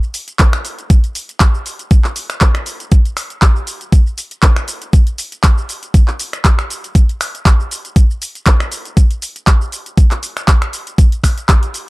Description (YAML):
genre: nu-disco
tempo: 119 BPM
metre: 4/4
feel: swing 54% on 16ths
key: none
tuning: none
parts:
  - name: pop drum kit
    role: drums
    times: 0.0-11.9 s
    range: finger snaps, handclaps, hi-hat, shaker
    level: -19 LUFS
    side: equal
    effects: overdrive
  - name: electronic kick drum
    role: drums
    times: 0.4-11.6 s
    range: none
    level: -10 LUFS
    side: equal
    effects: overdrive
room: little or no reverb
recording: dark, warm production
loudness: -12 LUFS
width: side -22 dB against mid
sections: 0.0-11.9 A section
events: none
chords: none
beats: 0.40 0.90 1.40 | 1.91 2.41 2.92 3.42 | 3.92 4.43 4.93 5.44 | 5.94 6.45 6.95 7.46 | 7.96 8.46 8.97 9.47 | 9.98 10.48 10.98 11.49